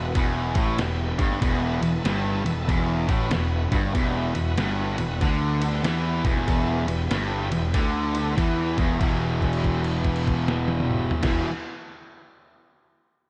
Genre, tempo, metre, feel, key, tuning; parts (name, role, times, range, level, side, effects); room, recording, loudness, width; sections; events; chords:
blues rock power trio and southern rock; 95 BPM; 4/4; swing 64% on 8ths; E minor; A4 = 441 Hz
bright tonewheel organ; sustained chords; 0.0-11.5 s; B3 to A4; -37 LUFS; equal; slow rotary speaker, overdrive
fuzz guitar; riff; 0.0-11.5 s; E2 to E3; -28 LUFS; equal; distortion, slapback echo
fuzz picked electric bass; bass; 0.0-11.5 s; E1 to E2; -30 LUFS; equal; overdrive
lo-fi sampler-style drum kit; drums; 0.2-11.4 s; crash cymbal, kick drum, ride cymbal, snare drum, toms; -30 LUFS; equal
light reverb; -24 LUFS; mono
0.0-9.0 A section; 9.0-11.5 B section
kick and snare drop out 7.7-9.0; held note 9.0-11.2
0.0 Em